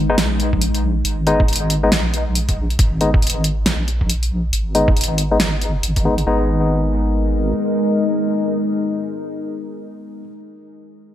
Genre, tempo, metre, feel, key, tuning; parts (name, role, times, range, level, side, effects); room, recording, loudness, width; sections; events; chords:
deep dubstep; 138 BPM; 4/4; swing 60% on 16ths, half-time; G# minor; A4 = 440 Hz
deep dark ambient pad; sustained chords; 0.0-10.2 s; G#3 to A#4; -23 LUFS; left 1 dB; chorus, built-in reverb
deep soft wobble bass; bass; 0.0-7.5 s; G#1 to A#1; -20 LUFS; equal; chorus
barky tine electric piano; stabs; 0.1-10.2 s; G#3 to D#4; -22 LUFS; left 2 dB; overdrive, low-pass filter, dub echo
deep house drum kit; drums; 0.2-6.2 s; hi-hat, snare drum; -21 LUFS; equal; gated reverb
electronic kick drum; drums; 0.5-6.0 s; -18 LUFS; equal
light reverb, digital ambience; bright 1980s-style digital production; -16 LUFS; side -12 dB against mid
0.0-6.3 A section; 6.3-9.7 B section
filter sweep on tine electric piano 0.0-6.3
0.0 G#5; 6.3 G#m